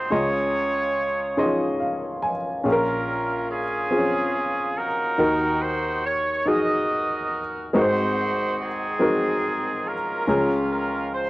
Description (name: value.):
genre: gospel.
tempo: 47 BPM (dotted quarters).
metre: 6/8.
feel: straight.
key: Db major.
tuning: A4 = 440 Hz.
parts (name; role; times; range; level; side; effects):
clear horn section; melody; 0.0-11.3 s; C4 to Eb5; -24 LUFS; right 1 dB; none.
warm upright piano; accompaniment; 0.0-11.3 s; Ab1 to C6; -23 LUFS; left 1 dB; cassette tape.
room: light reverb, studio reverb.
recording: home recording on cassette.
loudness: -21 LUFS.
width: side -19 dB against mid.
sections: 0.0-2.7 A section; 2.7-11.3 B section.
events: upright piano fill 1.4-2.7.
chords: 0.1 Dbmaj9; 2.7 Bbm; 5.2 Ebm; 7.7 Ab7; 10.3 Db.